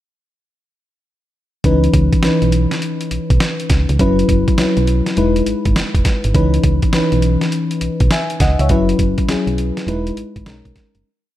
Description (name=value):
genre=R&B, new jack swing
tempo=102 BPM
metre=4/4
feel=swing 65% on 16ths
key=C# minor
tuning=A4 = 440 Hz
part: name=mellow FM electric piano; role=accompaniment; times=1.6-11.1 s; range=E3 to G#5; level=-17 LUFS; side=left 2 dB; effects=chorus
part: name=solid FM bass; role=bass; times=1.6-11.0 s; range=E1 to C#2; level=-17 LUFS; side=right 1 dB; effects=none
part: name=boom bap sampler-style drum kit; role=drums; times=1.6-11.0 s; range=hi-hat, kick drum, snare drum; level=-18 LUFS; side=equal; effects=none
room=digital ambience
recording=none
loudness=-13 LUFS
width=side -13 dB against mid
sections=1.6-11.1 verse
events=fade-out 8.7-11.1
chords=1.6 C#m9; 4.0 F#7sus4; 5.2 Emaj7; 6.3 C#m9; 8.7 F#7sus4; 9.9 Emaj7; 10.5 Bmaj13